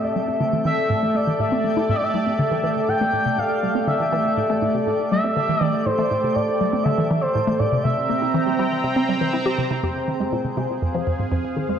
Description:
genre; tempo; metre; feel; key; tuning
ambient, sequencer-driven space music; 121 BPM; 4/4; straight; A minor; A4 = 439 Hz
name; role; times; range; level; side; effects
expressive synth lead; melody; 0.0-9.3 s; C5 to G5; -23 LUFS; left 1 dB; chorus, ping-pong delay
sweeping resonant pad; sustained chords; 0.0-11.8 s; A3 to Bb5; -24 LUFS; right 1 dB; chorus
twinkling granular texture; texture; 0.0-9.8 s; G4 to G5; -36 LUFS; equal; built-in reverb
hollow square pluck; riff; 0.2-11.8 s; F2 to G4; -24 LUFS; equal; chorus, phaser, ping-pong delay
room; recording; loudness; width
wet scoring stage reverb, RT60 1.9 s; worn, warbling old tape, cassette tape, warbly pitch drift; -19 LUFS; side -8 dB against mid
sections
0.0-9.8 A section; 9.8-11.8 B section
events
fade-in on synth texture 0.0-9.8; filter sweep on synth arpeggio sound 0.0-9.8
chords
0.0 Am; 7.8 C7; 9.8 Fm

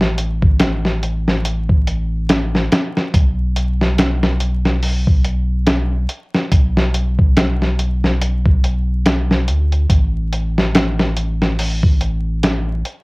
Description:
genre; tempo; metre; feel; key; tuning
trip hop; 71 BPM; 4/4; swing 58% on 16ths; unclear; A4 = 440 Hz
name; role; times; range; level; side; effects
warm sub bass; bass; 0.0-12.8 s; A1 to D2; -18 LUFS; equal; none
dusty soul sampler-style drum kit; drums; 0.0-13.0 s; hi-hat, kick drum, snare drum; -15 LUFS; equal; cassette tape
room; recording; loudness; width
little or no reverb; home recording on cassette, vinyl crackle; -14 LUFS; side -26 dB against mid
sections
0.0-13.0 A section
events
none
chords
none

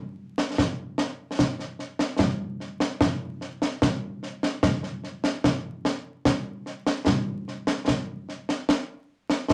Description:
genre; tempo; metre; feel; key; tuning
scottish traditional; 74 BPM; 3/4; straight; none; none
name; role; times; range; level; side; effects
concert snare drum and concert bass drum; drums; 0.4-9.5 s; none; -27 LUFS; equal; none
room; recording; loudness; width
wet small room reverb, RT60 0.5 s; vinyl crackle; -27 LUFS; mono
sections
0.0-7.9 A section; 7.9-9.5 B section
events
none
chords
none

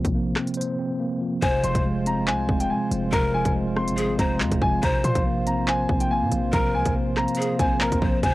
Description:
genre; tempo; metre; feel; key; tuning
hip hop, drill; 141 BPM; 4/4; half-time; unclear; A4 = 441 Hz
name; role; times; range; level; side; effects
mellow tine electric piano; accompaniment; 0.0-8.3 s; C3 to C5; -25 LUFS; equal; medium stereo tremolo, cassette tape
hard-hitting 808-style bass; bass; 0.0-8.3 s; F1 to Bb2; -28 LUFS; equal; none
drill drum kit; drums; 0.0-8.3 s; handclaps, hi-hat, kick drum, rim click; -26 LUFS; equal; none
dark concert grand piano; melody; 1.4-8.3 s; G5 to C6; -27 LUFS; left 1 dB; cassette tape
breathy hollow large pan pipes; second line; 1.4-8.3 s; Ab4 to C5; -29 LUFS; left 2 dB; cassette tape, analog delay
pedal harmonium; sustained chords; 1.4-8.3 s; Ab3 to C5; -32 LUFS; right 2 dB; cassette tape
room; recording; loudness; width
light reverb; home recording on cassette; -21 LUFS; side -18 dB against mid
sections
0.0-1.4 A section; 1.4-8.3 B section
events
break 0.0-1.4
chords
0.0 Bbsus2; 1.4 Fm; 4.8 Bbsus2

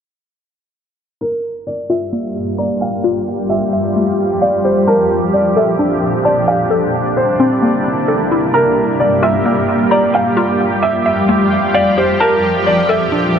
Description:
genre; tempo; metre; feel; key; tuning
hip hop; 131 BPM; 4/4; half-time; G dorian; A4 = 440 Hz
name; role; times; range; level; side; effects
felt-muted upright piano; melody; 1.2-13.4 s; Bb4 to F5; -17 LUFS; equal; low-pass filter, digital delay
granular cloud pad; sustained chords; 2.0-13.4 s; F2 to G4; -15 LUFS; equal; built-in reverb, low-pass filter
mallet-like synth pluck; arpeggios; 1.2-13.4 s; A3 to Bb5; -19 LUFS; left 2 dB; chorus, phaser, low-pass filter, digital delay
room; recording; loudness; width
moderate huge ambient reverb, RT60 5.9 s; none; -12 LUFS; side -7 dB against mid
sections
1.2-13.4 A section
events
filter sweep 1.2-13.4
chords
1.2 Gm7; 3.0 Fmaj9; 4.9 Bbmaj7; 6.7 C13; 8.5 Gm7; 10.4 Fmaj9; 12.2 Bbmaj7

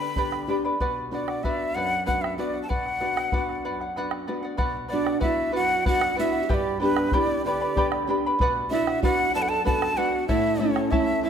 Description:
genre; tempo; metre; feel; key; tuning
andean folk, Andean ensemble; 63 BPM (dotted quarters); 6/8; straight; B minor; A4 = 440 Hz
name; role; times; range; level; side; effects
breathy bright quena; melody; 0.0-11.3 s; B4 to B5; -26 LUFS; equal; none
charango; accompaniment; 0.0-11.3 s; E4 to B5; -29 LUFS; right 1 dB; none
nylon-string guitar; accompaniment; 0.0-11.3 s; E2 to G4; -29 LUFS; left 2 dB; none
bombo; percussion; 0.2-11.1 s; none; -30 LUFS; equal; none
bright pan flute; second line; 4.9-11.3 s; C#4 to D5; -28 LUFS; right 6 dB; none
room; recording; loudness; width
moderate recital hall reverb, RT60 1.7 s; none; -22 LUFS; side -8 dB against mid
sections
0.0-4.6 A section; 4.6-11.3 A section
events
none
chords
0.0 G; 0.8 Bm; 6.5 G; 8.4 Bm; 10.3 A

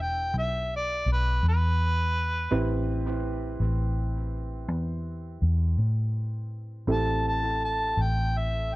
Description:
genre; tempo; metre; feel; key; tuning
slow blues; 55 BPM (dotted quarters); 12/8; straight; unclear; A4 = 439 Hz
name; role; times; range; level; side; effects
mellow harmonica; melody; 0.0-8.8 s; B4 to A5; -28 LUFS; equal; none
warm upright piano; accompaniment; 0.0-8.8 s; C4 to B4; -33 LUFS; right 2 dB; tape echo
vintage muted fingered electric bass; bass; 0.0-8.8 s; E1 to A2; -26 LUFS; equal; none
room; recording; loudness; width
light reverb, small room ambience; echo-heavy mix; -25 LUFS; side -19 dB against mid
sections
0.0-8.8 A section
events
none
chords
0.0 Em7; 2.5 Am7

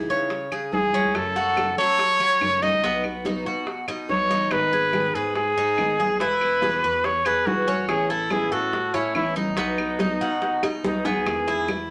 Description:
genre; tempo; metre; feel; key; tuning
latin, Cuban son and guajira; 142 BPM; 4/4; straight; E major; A4 = 440 Hz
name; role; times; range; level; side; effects
picked steel-string acoustic guitar; accompaniment; 0.0-11.9 s; B2 to G#4; -34 LUFS; equal; none
Cuban tres; arpeggios; 0.0-11.9 s; B3 to C#5; -30 LUFS; equal; none
growling FM bass; bass; 0.0-11.9 s; E1 to F#3; -38 LUFS; equal; none
congas; percussion; 0.1-11.9 s; none; -36 LUFS; equal; none
bongos; percussion; 0.3-11.9 s; none; -35 LUFS; equal; none
claves; percussion; 0.5-11.9 s; none; -36 LUFS; equal; none
warm trumpet; melody; 0.7-11.7 s; D#4 to D#5; -24 LUFS; equal; none
room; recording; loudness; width
wet studio reverb, RT60 0.6 s; none; -23 LUFS; mono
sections
0.0-11.3 A section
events
drum fill 10.6-11.3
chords
0.0 C#madd9; 1.1 F#m; 2.8 B; 4.5 G#m; 6.2 Eadd9; 7.9 Aadd9; 9.6 B; 11.3 Emaj7

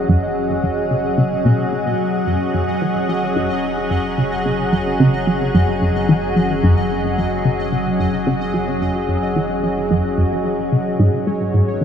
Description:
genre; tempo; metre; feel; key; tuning
ambient; 110 BPM; 4/4; straight; unclear; A4 = 437 Hz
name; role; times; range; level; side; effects
evolving wavetable pad; sustained chords; 0.0-11.8 s; F#3 to F#5; -20 LUFS; left 1 dB; chorus, built-in reverb
fat analog bass; bass; 0.0-11.8 s; F#1 to G#1; -34 LUFS; equal; none
pulsing gated texture; texture; 0.0-11.8 s; C#5 to D#5; -27 LUFS; right 1 dB; chorus, built-in reverb
resonant blip pluck; riff; 0.1-11.8 s; F#2 to G#3; -19 LUFS; equal; phaser, tape echo
room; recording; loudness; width
wet huge ambient reverb, RT60 8.1 s; in a vast, echoing space; -16 LUFS; side -8 dB against mid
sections
0.0-11.8 A section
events
fade-in on analog synth bass 0.0-11.8; filter sweep on synth arpeggio sound 0.0-11.8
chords
0.0 F#sus2; 11.0 G#m

